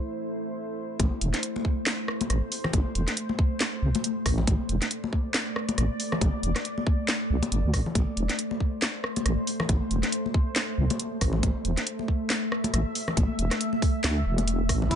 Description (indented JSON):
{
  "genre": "deep dubstep",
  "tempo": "138 BPM",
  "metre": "4/4",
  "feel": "swing 57% on 16ths, half-time",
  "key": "A minor",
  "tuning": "A4 = 441 Hz",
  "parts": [
    { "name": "deep dark ambient pad", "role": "sustained chords", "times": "0.0-15.0 s", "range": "A3 to E5", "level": "-32 LUFS", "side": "equal", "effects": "chorus, built-in reverb" },
    { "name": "deep soft wobble bass", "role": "bass", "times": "1.0-15.0 s", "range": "E1 to D2", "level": "-26 LUFS", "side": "equal", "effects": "chorus" },
    { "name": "electronic kick drum", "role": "drums", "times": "1.0-15.0 s", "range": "none", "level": "-26 LUFS", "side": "equal", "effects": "none" },
    { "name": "garage drum kit", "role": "drums", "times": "1.0-15.0 s", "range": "crash cymbal, handclaps, hi-hat, rim click, snare drum", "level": "-29 LUFS", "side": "equal", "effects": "none" },
    { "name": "congas", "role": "percussion", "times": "1.0-15.0 s", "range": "none", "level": "-33 LUFS", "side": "left 4 dB", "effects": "dub echo" },
    { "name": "mellow duduk", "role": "melody", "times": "14.9-15.0 s", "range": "E4", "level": "-26 LUFS", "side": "right 2 dB", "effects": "none" }
  ],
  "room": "little or no reverb",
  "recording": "nothing above 10.5 kHz",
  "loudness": "-24 LUFS",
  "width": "side -9 dB against mid",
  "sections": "1.0-15.0 A section",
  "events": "break 0.1-1.0; drop 1.0-15.0",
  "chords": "0.0 Am"
}